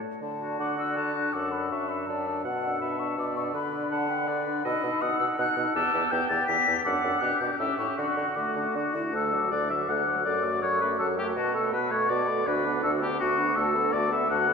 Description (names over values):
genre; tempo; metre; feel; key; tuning
quick classical-period movement for wind quintet; 163 BPM; 3/4; straight; D major; A4 = 440 Hz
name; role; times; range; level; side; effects
mellow oboe; second line; 0.0-14.5 s; F#4 to F#5; -29 LUFS; left 4 dB; none
clear clarinet; accompaniment; 0.0-14.5 s; D4 to A5; -32 LUFS; right 6 dB; none
warm French horn; accompaniment; 0.0-14.5 s; F#3 to E4; -34 LUFS; equal; none
mellow hollow silver concert flute; melody; 0.2-14.5 s; F#5 to B6; -31 LUFS; left 6 dB; none
warm bassoon; bass; 0.2-14.5 s; D2 to D3; -32 LUFS; right 2 dB; none
room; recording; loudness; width
wet church reverb, RT60 3.9 s; recorded in a church or concert hall; -24 LUFS; side -5 dB against mid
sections
0.2-9.1 A section; 9.1-14.5 A section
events
none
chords
0.2 D; 1.3 D/F#; 2.4 Bm7; 3.5 Bm/D; 4.6 B7; 5.8 Em; 6.9 D/F#; 7.2 G; 7.6 A7; 8.0 D; 10.3 D/F#; 11.4 Bm7; 12.5 Bm/D; 13.6 Bm7/D